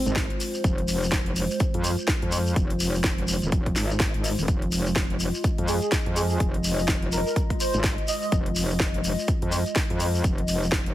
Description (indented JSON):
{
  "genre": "bass house",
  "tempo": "125 BPM",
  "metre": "4/4",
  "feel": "swing 59% on 16ths",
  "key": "F minor",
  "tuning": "A4 = 441 Hz",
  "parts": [
    { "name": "dark analog pad", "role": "sustained chords", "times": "0.0-10.9 s", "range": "Ab3 to Eb5", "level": "-32 LUFS", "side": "left 1 dB", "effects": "chorus, phaser, sidechain pumping" },
    { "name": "airy dreamy lead", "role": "melody", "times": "0.1, 5.7-8.3 s", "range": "C4 to Eb5", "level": "-30 LUFS", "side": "right 2 dB", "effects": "chorus, ping-pong delay" },
    { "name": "metallic wobble bass", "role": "bass", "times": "0.1-10.9 s", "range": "Eb1 to F2", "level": "-26 LUFS", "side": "equal", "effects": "chorus, tube saturation, sidechain pumping" },
    { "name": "house drum kit", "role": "drums", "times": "0.1-10.9 s", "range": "hi-hat, snare drum", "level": "-30 LUFS", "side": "equal", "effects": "overdrive, small room ambience" },
    { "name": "shekere", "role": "percussion", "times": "0.1-10.8 s", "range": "none", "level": "-33 LUFS", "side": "left 1 dB", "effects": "none" },
    { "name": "electronic kick drum", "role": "drums", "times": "0.2-10.8 s", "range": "none", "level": "-26 LUFS", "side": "equal", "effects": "overdrive, small room ambience" }
  ],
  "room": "digital ambience",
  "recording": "heavily compressed radio sound, multiband compression",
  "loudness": "-22 LUFS",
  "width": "side -14 dB against mid",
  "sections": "0.0-10.9 A section",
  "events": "none",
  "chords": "0.0 Fm",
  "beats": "0.16 | 0.64 1.12 1.60 2.08 | 2.56 3.04 3.52 4.00 | 4.48 4.96 5.44 5.92 | 6.40 6.88 7.36 7.84 | 8.32 8.80 9.28 9.76 | 10.24 10.72"
}